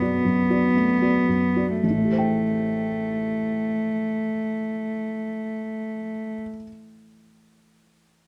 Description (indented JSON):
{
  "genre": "neoclassical piano and strings",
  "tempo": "57 BPM",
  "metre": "4/4",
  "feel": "rubato",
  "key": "A dorian",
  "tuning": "A4 = 440 Hz",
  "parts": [
    { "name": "rich cello", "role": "second line", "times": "0.0-6.3 s", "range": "A3 to B3", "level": "-26 LUFS", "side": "equal", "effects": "none" },
    { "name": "felt-muted upright piano", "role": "accompaniment", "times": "0.0-8.3 s", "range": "A1 to G5", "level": "-27 LUFS", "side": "equal", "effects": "none" }
  ],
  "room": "light reverb",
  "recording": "dark, warm production, tape saturation",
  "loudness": "-24 LUFS",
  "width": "mono",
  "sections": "0.0-1.8 A section; 1.8-6.0 B section",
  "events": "slowing down 0.0-1.8",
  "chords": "0.0 Bm7; 1.8 Am7"
}